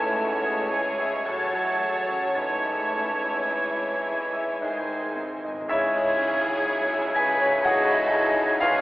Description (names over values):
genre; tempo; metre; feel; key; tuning
classical, romantic movement for piano and orchestra; 52-63 BPM; 3/4; rubato; C# minor; A4 = 440 Hz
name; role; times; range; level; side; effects
clear concert grand piano; melody; 0.0-8.8 s; C#2 to G#5; -27 LUFS; left 1 dB; none
warm symphonic violin section; melody; 0.0-8.8 s; E4 to B4; -36 LUFS; left 1 dB; none
clear oboe; second line; 0.0-8.8 s; E#5 to A5; -29 LUFS; right 1 dB; none
hollow concert flute; second line; 0.0-8.8 s; C#5 to A5; -30 LUFS; equal; none
warm clarinet; second line; 0.0-8.8 s; B4 to C#5; -33 LUFS; left 1 dB; none
warm symphonic violin section; second line; 0.0-8.8 s; E4 to A5; -34 LUFS; left 1 dB; none
rich symphonic viola section; accompaniment; 0.0-8.8 s; E3 to C#5; -33 LUFS; right 1 dB; none
warm bassoon; accompaniment; 0.0-8.8 s; C#3 to F#3; -33 LUFS; equal; none
mellow French horn section; sustained chords; 0.0-8.8 s; F#3 to G#4; -36 LUFS; equal; none
rich symphonic cello section; bass; 0.0-8.8 s; C#2 to A3; -44 LUFS; right 1 dB; none
warm symphonic double bass section; bass; 0.0-8.8 s; G#1 to C#2; -44 LUFS; right 1 dB; none
timpani; percussion; 2.4-7.1 s; G#2 to C#3; -50 LUFS; equal; none
clear trombone section; sustained chords; 5.7-8.8 s; C#3 to C#4; -36 LUFS; right 1 dB; none
room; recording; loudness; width
wet cathedral reverb, RT60 5.3 s; telephone sound; -22 LUFS; side -18 dB against mid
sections
0.0-5.7 A section; 5.7-8.8 B section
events
timpani fill 4.6-5.7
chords
0.0 C#m; 1.3 F#m/A; 2.4 C#m/G#; 4.6 G#; 5.7 C#m